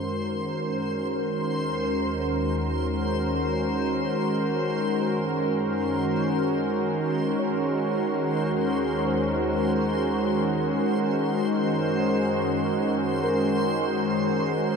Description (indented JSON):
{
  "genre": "ambient",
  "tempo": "free time",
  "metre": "none",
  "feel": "none",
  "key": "unclear",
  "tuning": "A4 = 441 Hz",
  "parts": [
    { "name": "warm analog pad", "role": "sustained chords", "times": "0.0-14.8 s", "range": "Eb3 to Bb4", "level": "-24 LUFS", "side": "equal", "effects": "chorus" },
    { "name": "muted felt-like synth keys", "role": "arpeggios", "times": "0.0-1.2, 7.4-14.5 s", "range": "Bb4 to Db5", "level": "-35 LUFS", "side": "right 1 dB", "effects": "none" },
    { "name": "deep rumbling drone", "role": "bass", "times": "0.0-14.8 s", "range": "Eb2 to Gb2", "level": "-38 LUFS", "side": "equal", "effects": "built-in reverb" },
    { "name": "backwards swelling texture", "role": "texture", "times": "0.0-14.8 s", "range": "C5 to C6", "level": "-32 LUFS", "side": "left 1 dB", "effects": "built-in reverb" }
  ],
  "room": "wet huge ambient reverb, RT60 8.4 s",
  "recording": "dark, warm production",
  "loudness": "-23 LUFS",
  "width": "side -5 dB against mid",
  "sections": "0.0-14.8 A section",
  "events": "fade-out on synth drone 0.0-14.8",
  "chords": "0.0 Gb; 1.1 Ebm; 4.5 Gb; 7.8 Ebm; 11.2 Gb"
}